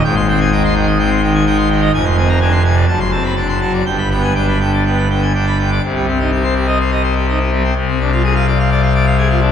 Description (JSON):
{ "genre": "classical, organ toccata", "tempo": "126 BPM", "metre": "4/4", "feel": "straight", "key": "C minor", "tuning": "A4 = 440 Hz", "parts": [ { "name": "pipe organ, full organ", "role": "solo", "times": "0.0-9.5 s", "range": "F1 to C6", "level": "-12 LUFS", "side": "left 1 dB", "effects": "none" } ], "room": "wet church reverb, RT60 2.8 s", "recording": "minimal, uncompressed stereo recording", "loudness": "-12 LUFS", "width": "side -8 dB against mid", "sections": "0.0-5.8 A section; 5.8-9.5 B section", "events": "none", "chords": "0.0 Abmaj7; 1.9 Dm7b5/F; 2.9 D7/F#; 3.9 G; 5.8 Cm; 7.8 Dm7b5/C" }